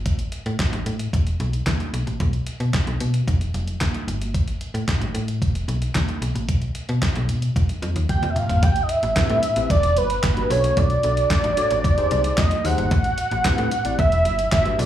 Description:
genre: early-eighties boogie funk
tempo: 112 BPM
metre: 4/4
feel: straight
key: A dorian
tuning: A4 = 439 Hz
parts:
  - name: slap-like FM bass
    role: bass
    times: 0.0-14.9 s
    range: E1 to B2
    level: -23 LUFS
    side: equal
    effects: none
  - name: crisp 8-bit digital drum machine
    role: drums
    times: 0.1-14.9 s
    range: handclaps, hi-hat, kick drum, snare drum, toms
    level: -23 LUFS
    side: equal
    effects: none
  - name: congas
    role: percussion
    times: 0.1-14.6 s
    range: none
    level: -35 LUFS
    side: right 3 dB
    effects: slapback echo
  - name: fat analog lead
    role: melody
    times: 8.1-14.9 s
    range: B4 to G5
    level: -21 LUFS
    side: right 1 dB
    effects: slapback echo
  - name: mellow tine electric piano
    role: accompaniment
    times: 9.2-14.9 s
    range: C4 to D5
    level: -29 LUFS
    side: left 4 dB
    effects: slapback echo
room: little or no reverb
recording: live gig heard through the venue's PA, club reverb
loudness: -19 LUFS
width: side -11 dB against mid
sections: 0.0-8.6 A section; 8.6-14.9 B section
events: drum fill 8.1-8.6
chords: 0.1 N.C.; 1.1 E5; 1.9 N.C.; 3.3 Fsus2; 4.3 N.C.; 5.4 E5; 6.2 N.C.; 7.6 Fsus2; 8.6 Am9; 9.7 Em9; 10.5 Bm9; 11.8 Fm9; 12.9 Am9; 14.0 Em9

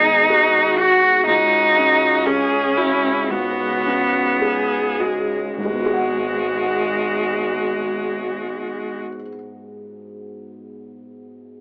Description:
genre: neoclassical piano and strings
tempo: 51-63 BPM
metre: 4/4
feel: rubato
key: G# minor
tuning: A4 = 441 Hz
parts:
  - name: rich cello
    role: second line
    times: 0.0-9.0 s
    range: G#3 to F#4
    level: -17 LUFS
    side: equal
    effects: none
  - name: felt-muted upright piano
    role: accompaniment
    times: 0.0-11.6 s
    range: C#2 to F#5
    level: -25 LUFS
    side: equal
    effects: plate reverb
  - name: warm viola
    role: accompaniment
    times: 0.0-9.0 s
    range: E4 to G#4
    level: -23 LUFS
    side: equal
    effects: none
  - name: clear double bass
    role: bass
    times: 0.0-9.0 s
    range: G#1 to C#2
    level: -31 LUFS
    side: equal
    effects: none
room: moderate studio reverb, RT60 0.6 s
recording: dry, gritty hardware recording, transformer saturation, cassette tape, telephone sound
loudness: -16 LUFS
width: side -38 dB against mid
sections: 0.0-5.6 A section; 5.6-10.1 B section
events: slowing down 0.0-5.6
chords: 0.0 G#m7; 1.3 C#7sus4; 5.6 G#m7

